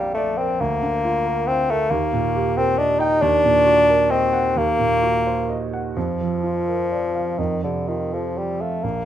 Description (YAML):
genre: classical, romantic duo for bassoon and grand piano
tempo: 40-46 BPM (dotted quarters)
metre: 6/8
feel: rubato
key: Bb major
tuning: A4 = 439 Hz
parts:
  - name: clear bassoon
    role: melody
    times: 0.0-9.1 s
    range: D3 to Eb4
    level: -19 LUFS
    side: left 2 dB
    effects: none
  - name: warm grand piano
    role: accompaniment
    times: 0.0-9.1 s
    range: Bb1 to D6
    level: -23 LUFS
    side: right 5 dB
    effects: none
room: light reverb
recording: none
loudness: -18 LUFS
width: side -11 dB against mid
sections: 0.0-9.1 A section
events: none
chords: 0.0 Bb; 0.6 Bb/D; 1.9 Eb; 3.2 Ebm; 4.6 Cm7b5/Eb; 6.0 Bb/F; 7.4 F